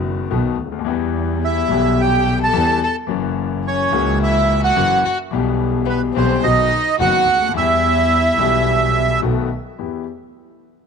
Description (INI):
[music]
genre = tango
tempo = 108 BPM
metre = 4/4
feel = rubato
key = E harmonic minor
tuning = A4 = 440 Hz
[part]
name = warm grand piano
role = accompaniment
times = 0.0-10.0 s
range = F#1 to G4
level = -21 LUFS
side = left 12 dB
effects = none
[part]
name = dark double bass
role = bass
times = 0.0-10.0 s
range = F#1 to E2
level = -21 LUFS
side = right 2 dB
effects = none
[part]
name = bandoneon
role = melody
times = 1.4-9.2 s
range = B4 to A5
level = -18 LUFS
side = right 6 dB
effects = none
[part]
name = warm violin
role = second line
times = 1.4-9.2 s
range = B3 to A4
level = -24 LUFS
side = left 12 dB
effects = none
[sound]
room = light reverb, small room ambience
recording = 1960s-style stereo with parts hard left and right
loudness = -15 LUFS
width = side -6 dB against mid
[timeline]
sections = 0.0-9.8 A section; 9.8-10.9 B section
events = none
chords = 0.0 B; 0.9 Em; 3.1 F#7; 5.3 Em/B; 6.4 B; 7.6 Em; 9.2 B7; 9.8 Em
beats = 0.31 | 0.87 1.43 1.99 2.55 | 3.10 3.66 4.22 4.77 | 5.33 5.88 6.44 7.00 | 7.56 8.12 8.68 9.24 | 9.80